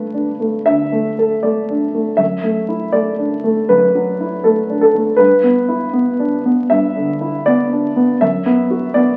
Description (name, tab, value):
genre	neoclassical minimalist piano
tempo	74-84 BPM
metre	4/4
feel	rubato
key	unclear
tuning	A4 = 440 Hz
part	dark grand piano	solo	0.0-9.2 s	F#2 to E5	-16 LUFS	equal	none
room	moderate large studio reverb, RT60 0.9 s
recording	very old 78 rpm record, vinyl crackle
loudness	-16 LUFS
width	mono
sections	0.0-9.2 A section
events	none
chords	0.0 Gadd9; 2.2 Dadd9/F#; 5.2 Em7/G; 8.2 Bm/F#